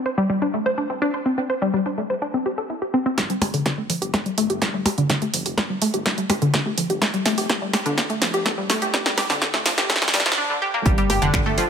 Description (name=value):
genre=melodic techno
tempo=125 BPM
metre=4/4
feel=straight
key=unclear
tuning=A4 = 438 Hz
part: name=analog pluck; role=arpeggios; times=0.1-11.6 s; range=D3 to G5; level=-22 LUFS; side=equal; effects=chorus, sidechain pumping, digital delay
part: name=round analog bass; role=bass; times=3.2-11.6 s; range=F1 to G2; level=-33 LUFS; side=right 1 dB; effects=none
part: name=electronic kick drum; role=drums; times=3.2-11.4 s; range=none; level=-24 LUFS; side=equal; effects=high-pass filter on kick, high-pass filter on room
part: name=techno drum kit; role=drums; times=3.2-11.7 s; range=finger snaps, hi-hat, percussion blips, snare drum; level=-22 LUFS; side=right 1 dB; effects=low-pass filter on snare, sidechain pumping on hats, low-pass filter on hats, sidechain pumping on perc, low-pass filter on perc, low-pass filter on room
room=moderate lush hall reverb, RT60 1.7 s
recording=high-pass filter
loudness=-19 LUFS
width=side -7 dB against mid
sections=0.0-3.2 A section; 3.2-10.9 B section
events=build-up 3.2-10.9; drum fill 3.2-10.4; filter sweep on synth pluck 3.2-10.9; filter sweep 3.2-10.9; break 10.4-10.9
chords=0.0 C5/G; 3.2 N.C.; 10.9 G5